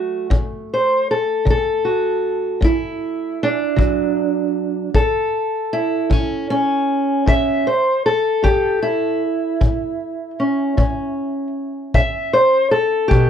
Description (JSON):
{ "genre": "acoustic country blues, solo or duo", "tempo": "52 BPM (dotted quarters)", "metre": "12/8", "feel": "straight", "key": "A mixolydian", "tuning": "A4 = 440 Hz", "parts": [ { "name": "fingerpicked steel-string acoustic guitar", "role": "melody", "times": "0.0-13.3 s", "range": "A2 to E5", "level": "-17 LUFS", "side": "equal", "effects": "none" }, { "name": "kick drum", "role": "drums", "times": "0.3-13.3 s", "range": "none", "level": "-18 LUFS", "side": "left 1 dB", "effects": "none" } ], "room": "moderate studio ambience, RT60 0.5 s", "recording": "dark, warm production", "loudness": "-16 LUFS", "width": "side -8 dB against mid", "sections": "0.0-13.3 A section", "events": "none", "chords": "0.0 D; 4.9 A" }